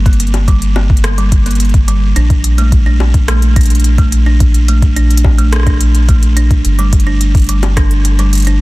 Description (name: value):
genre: IDM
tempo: 107 BPM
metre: 4/4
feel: straight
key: Bb major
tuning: A4 = 440 Hz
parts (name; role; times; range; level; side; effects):
- round analog bass; bass; 0.0-8.6 s; G1 to Bb1; -11 LUFS; equal; none
- buzzing kalimba; arpeggios; 0.1-8.6 s; G3 to D4; -18 LUFS; right 3 dB; tape echo
- electronic kick drum; drums; 0.1-7.9 s; none; -11 LUFS; equal; overdrive
- organic electronic drum kit; drums; 0.1-8.6 s; bongos, hi-hat, rim click; -21 LUFS; left 1 dB; overdrive
room: little or no reverb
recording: dense, heavily limited modern master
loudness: -8 LUFS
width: side -20 dB against mid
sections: 0.0-8.6 A section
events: none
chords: 0.0 Gm; 2.2 Bbmaj7; 6.6 G5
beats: 0.48 1.04 1.60 | 2.16 2.72 3.28 3.84 | 4.40 4.96 5.53 6.09 | 6.65 7.21 7.77 8.33